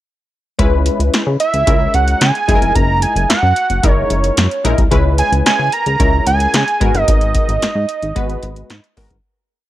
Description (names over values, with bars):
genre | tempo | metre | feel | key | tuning
early-eighties boogie funk | 111 BPM | 4/4 | straight | C# dorian | A4 = 440 Hz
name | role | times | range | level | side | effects
funky polysynth comp | accompaniment | 0.6-9.2 s | G#3 to B4 | -21 LUFS | left 4 dB | chorus
chorused synth bass | bass | 0.6-9.2 s | E#1 to C#3 | -16 LUFS | equal | none
electro analog drum machine | drums | 0.6-9.2 s | hi-hat, kick drum, snare drum | -17 LUFS | equal | none
fat analog lead | melody | 1.4-9.0 s | C#5 to A#5 | -16 LUFS | right 3 dB | slapback echo
room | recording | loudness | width
little or no reverb | none | -12 LUFS | side -14 dB against mid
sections
0.6-9.2 verse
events
fade-out 7.1-9.2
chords
0.6 C#m7; 2.5 F#13; 4.9 C#m7; 6.8 G#m9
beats
| 0.59 1.13 1.67 2.21 | 2.75 3.30 3.84 4.38 | 4.92 5.46 6.00 6.54 | 7.08 7.62 8.16 8.70